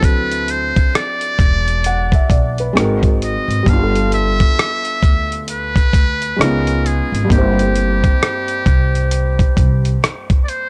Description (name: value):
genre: lo-fi hip hop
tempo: 66 BPM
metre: 4/4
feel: swing 60% on 16ths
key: unclear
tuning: A4 = 437 Hz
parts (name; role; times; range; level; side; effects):
- trumpet with metal mute; melody; 0.0-10.7 s; G4 to F5; -23 LUFS; equal; low-pass filter
- felt-muted upright piano; accompaniment; 0.0-10.7 s; G2 to F#5; -24 LUFS; equal; low-pass filter
- upright bass; bass; 0.0-10.0 s; E1 to D2; -21 LUFS; equal; none
- dusty soul sampler-style drum kit; drums; 0.0-10.7 s; hi-hat, kick drum, rim click; -17 LUFS; equal; none
room: small room ambience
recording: dry, gritty hardware recording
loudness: -16 LUFS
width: mono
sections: 0.0-10.7 A section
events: none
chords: 0.0 D13; 2.8 Ab9; 3.7 G13; 6.4 Db9; 7.3 C7/G